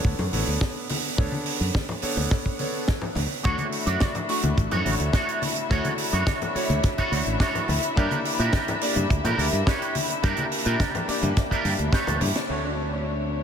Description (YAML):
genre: nu-disco, nu disco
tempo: 106 BPM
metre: 4/4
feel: straight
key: D major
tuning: A4 = 437 Hz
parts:
  - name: bright electric grand piano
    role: accompaniment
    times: 0.0-13.4 s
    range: A3 to C#6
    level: -30 LUFS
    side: left 1 dB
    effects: lush chorus, low-pass filter, ping-pong delay
  - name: modern bright fingered electric bass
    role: bass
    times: 0.0-13.4 s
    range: A1 to Bb2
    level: -26 LUFS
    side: equal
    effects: tube saturation
  - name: kick drum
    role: drums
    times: 0.0-12.0 s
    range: none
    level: -22 LUFS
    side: equal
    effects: none
  - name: congas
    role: percussion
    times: 0.2-12.3 s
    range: none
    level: -34 LUFS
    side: left 3 dB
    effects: none
  - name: tight funk drum kit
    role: drums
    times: 0.3-12.5 s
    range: hi-hat, snare drum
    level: -30 LUFS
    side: right 3 dB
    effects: none
  - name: dark studio string section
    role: sustained chords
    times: 3.4-13.4 s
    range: D4 to E5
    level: -31 LUFS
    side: left 4 dB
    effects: vintage 12-bit sampler grit, sidechain pumping
  - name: electric guitar with an envelope filter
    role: riff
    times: 3.4-13.1 s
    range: D4 to D5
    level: -29 LUFS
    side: right 3 dB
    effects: ensemble chorus, low-pass filter, ping-pong delay
room: moderate cathedral reverb, RT60 6.2 s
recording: dreamy mix soaked in reverb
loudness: -22 LUFS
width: side -8 dB against mid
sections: 0.0-12.5 A section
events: drum fill 11.9-12.5; band accent 12.4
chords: 0.0 Bm9; 3.2 Dmaj7; 8.0 Gm; 12.5 Dmaj7